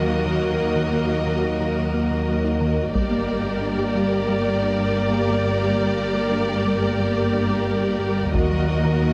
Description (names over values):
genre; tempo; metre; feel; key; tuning
cinematic, hybrid orchestral and electronic film score; 89 BPM; 4/4; straight; unclear; A4 = 441 Hz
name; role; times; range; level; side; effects
warm symphonic violin section; second line; 0.0-9.1 s; Bb4 to Eb5; -31 LUFS; equal; none
warm symphonic viola section; accompaniment; 0.0-9.1 s; Bb3 to G4; -28 LUFS; equal; none
warbly tape-like pad; sustained chords; 0.0-9.1 s; Gb3 to Eb5; -28 LUFS; equal; chorus, built-in reverb
warm symphonic cello section; bass; 0.0-9.1 s; Eb2 to G2; -30 LUFS; equal; none
warm symphonic double bass section; bass; 0.0-9.1 s; G1 to Eb2; -30 LUFS; equal; none
thumb-piano-like synth pluck; arpeggios; 0.3-9.1 s; Eb3 to G4; -30 LUFS; equal; chorus, phaser, tape echo
solo taiko drums; drums; 3.0-4.3, 8.3-9.1 s; none; -29 LUFS; equal; none
room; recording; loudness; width
moderate scoring stage reverb, RT60 1.5 s; none; -22 LUFS; mono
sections
0.0-9.1 A section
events
none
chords
0.0 Ebm; 3.0 Gm; 8.3 Ebm